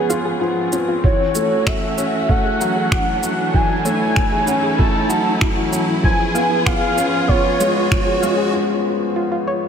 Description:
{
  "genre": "piano and strings electronica",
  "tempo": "96 BPM",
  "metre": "4/4",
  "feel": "straight",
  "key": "F# minor",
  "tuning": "A4 = 439 Hz",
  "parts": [
    { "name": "warm velvety synth lead", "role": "melody", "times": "0.0-8.5 s", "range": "G#4 to A5", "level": "-21 LUFS", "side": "equal", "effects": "chorus, ping-pong delay" },
    { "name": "dark studio string section", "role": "sustained chords", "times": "0.0-8.5 s", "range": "E3 to G#4", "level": "-25 LUFS", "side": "equal", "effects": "none" },
    { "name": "felt-muted upright piano", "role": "riff", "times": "0.0-9.7 s", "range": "E3 to E#4", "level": "-21 LUFS", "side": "left 2 dB", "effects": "ping-pong delay" },
    { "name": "warm sub bass", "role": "bass", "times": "0.0-8.5 s", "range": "none", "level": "barely audible", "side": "none", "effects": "none" },
    { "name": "riser", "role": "sound effects", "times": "0.0-8.5 s", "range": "none", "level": "-26 LUFS", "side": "right 2 dB", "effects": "none" },
    { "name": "soft round pluck", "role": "arpeggios", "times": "0.1-9.5 s", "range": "C#4 to F#5", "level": "-28 LUFS", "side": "equal", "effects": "none" },
    { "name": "electronic shaker and finger snaps", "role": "drums", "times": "0.1-8.4 s", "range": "none", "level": "-26 LUFS", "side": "equal", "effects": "overdrive, high-pass filter on perc, high-pass filter on snare" },
    { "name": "electronic kick drum", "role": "drums", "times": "1.0-8.0 s", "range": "none", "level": "-19 LUFS", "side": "right 1 dB", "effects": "none" }
  ],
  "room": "moderate lush hall reverb, RT60 3.1 s",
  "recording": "none",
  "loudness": "-15 LUFS",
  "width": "side -7 dB against mid",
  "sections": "0.0-9.7 A section",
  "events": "build-up 0.0-9.7; riser 0.0-8.5; break 8.5-9.7",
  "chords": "0.0 C#7; 1.0 F#m7; 6.0 C#7",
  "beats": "0.41 | 1.04 1.67 2.29 2.92 | 3.54 4.17 4.79 5.42 | 6.04 6.67 7.29 7.92 | 8.54 9.16"
}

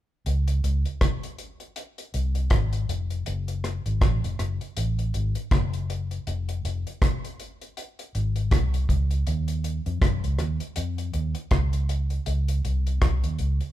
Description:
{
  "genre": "lovers rock reggae",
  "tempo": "80 BPM",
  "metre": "4/4",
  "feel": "swing 58% on 16ths",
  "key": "Db major",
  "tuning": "A4 = 441 Hz",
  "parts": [
    { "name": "vintage muted fingered electric bass", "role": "bass", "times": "0.3-13.6 s", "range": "F1 to Gb2", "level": "-25 LUFS", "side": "equal", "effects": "none" },
    { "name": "deep reggae drum kit", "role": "drums", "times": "0.3-13.7 s", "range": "hi-hat, kick drum, rim click", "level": "-26 LUFS", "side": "equal", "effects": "none" }
  ],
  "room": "light reverb",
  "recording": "band playing live in one room",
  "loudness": "-23 LUFS",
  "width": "side -13 dB against mid",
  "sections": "0.3-12.3 A section; 12.3-13.7 B section",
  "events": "none",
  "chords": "none",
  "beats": "| 0.26 1.01 1.76 2.51 | 3.26 4.01 4.76 5.51 | 6.26 7.01 7.76 8.51 | 9.26 10.01 10.76 11.51 | 12.26 13.01"
}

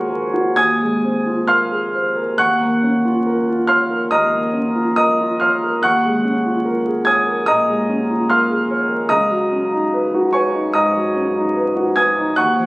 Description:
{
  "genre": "classical, impressionist solo piano",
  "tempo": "72 BPM",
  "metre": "4/4",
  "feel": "uneven beats, rubato",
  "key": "unclear",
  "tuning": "A4 = 440 Hz",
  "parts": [
    { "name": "warm grand piano", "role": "solo", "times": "0.0-12.7 s", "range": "Db2 to Ab6", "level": "-15 LUFS", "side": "equal", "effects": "none" }
  ],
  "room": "light reverb",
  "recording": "recorded on a phone in the room, club ambience, vinyl crackle, compression, nothing above 10.5 kHz",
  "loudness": "-15 LUFS",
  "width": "side -21 dB against mid",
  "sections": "0.0-12.7 A section",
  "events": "none",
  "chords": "0.0 Ebm11; 0.6 Ab69/Eb; 2.4 Gbmaj7/Eb; 5.8 Ebm11; 9.1 Db9sus4",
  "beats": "0.57 1.47 | 2.36 3.25 4.10 4.95 | 5.81 6.62 7.45 8.28 | 9.10 9.93 10.75 11.57 | 12.37"
}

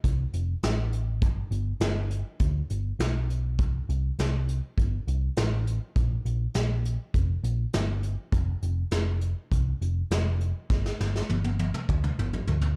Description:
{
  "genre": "folk rock and heartland rock",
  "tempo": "101 BPM",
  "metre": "4/4",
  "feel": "straight",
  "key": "unclear",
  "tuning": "A4 = 440 Hz",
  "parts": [
    { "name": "hollow-body short-scale picked electric bass", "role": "bass", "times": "0.0-12.8 s", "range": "F1 to D2", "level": "-29 LUFS", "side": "equal", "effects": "none" },
    { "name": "soft brush drum kit", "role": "drums", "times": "0.0-12.8 s", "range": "hi-hat, kick drum, snare drum, toms", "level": "-31 LUFS", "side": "equal", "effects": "none" }
  ],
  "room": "little or no reverb",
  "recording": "dark, warm production",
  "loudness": "-28 LUFS",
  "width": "mono",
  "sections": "0.0-12.8 A section",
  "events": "drum fill 10.7-12.8",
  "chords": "none",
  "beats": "0.04 0.63 | 1.22 1.81 2.41 3.00 | 3.59 4.18 4.77 5.37 | 5.96 6.55 7.14 7.73 | 8.32 8.92 9.51 10.10 | 10.69 11.29 11.88 12.47"
}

